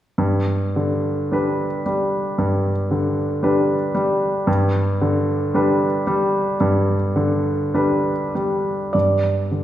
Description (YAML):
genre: classical, romantic nocturne for solo piano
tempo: 48-58 BPM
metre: 4/4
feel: rubato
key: G major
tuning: A4 = 440 Hz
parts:
  - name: warm concert grand piano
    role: solo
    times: 0.2-9.6 s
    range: G2 to D5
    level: -18 LUFS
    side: equal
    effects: none
room: wet recital hall reverb, RT60 1.7 s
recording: heard from further back in the room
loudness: -18 LUFS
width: side -12 dB against mid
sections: 0.2-8.9 A section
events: none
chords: 0.2 G; 8.9 G5